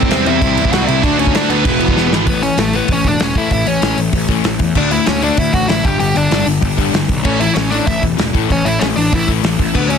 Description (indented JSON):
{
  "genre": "punk rock",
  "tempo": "193 BPM",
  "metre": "4/4",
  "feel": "straight",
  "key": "A mixolydian",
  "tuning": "A4 = 441 Hz",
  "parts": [
    { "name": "dark smooth lead guitar", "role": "melody", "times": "0.0-10.0 s", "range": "A3 to G5", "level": "-18 LUFS", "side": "right 1 dB", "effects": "overdrive, tape echo" },
    { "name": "distorted electric guitar", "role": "riff", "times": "0.0-2.3 s", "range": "E2 to D4", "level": "-19 LUFS", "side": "right 16 dB", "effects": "distortion" },
    { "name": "distorted electric guitar", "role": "riff", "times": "0.0-2.3 s", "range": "C3 to F#4", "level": "-22 LUFS", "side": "right 1 dB", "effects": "overdrive" },
    { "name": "overdriven semi-hollow guitar", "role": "riff", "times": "0.0-10.0 s", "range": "E2 to D4", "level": "-18 LUFS", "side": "left 16 dB", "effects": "none" },
    { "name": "fuzz picked electric bass", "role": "bass", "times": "0.0-10.0 s", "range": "E1 to A2", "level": "-20 LUFS", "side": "right 1 dB", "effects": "overdrive" },
    { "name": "loose indie drum kit", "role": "drums", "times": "0.0-10.0 s", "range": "crash cymbal, hi-hat, kick drum, snare drum", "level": "-17 LUFS", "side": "right 1 dB", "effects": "none" }
  ],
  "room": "light reverb",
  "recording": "dense, heavily limited modern master",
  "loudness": "-12 LUFS",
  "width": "side -7 dB against mid",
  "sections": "0.0-2.3 A section; 2.3-10.0 B section",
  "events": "drum fill 2.0-2.3",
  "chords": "0.0 C; 1.0 D; 1.6 E; 2.3 A; 4.8 D; 5.8 G5; 7.2 A",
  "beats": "0.10 0.41 0.72 | 1.03 1.34 1.65 1.96 | 2.27 2.58 2.89 3.20 | 3.51 3.82 4.13 4.44 | 4.75 5.06 5.38 5.69 | 6.00 6.31 6.62 6.93 | 7.25 7.56 7.87 8.18 | 8.50 8.81 9.12 9.43 | 9.75"
}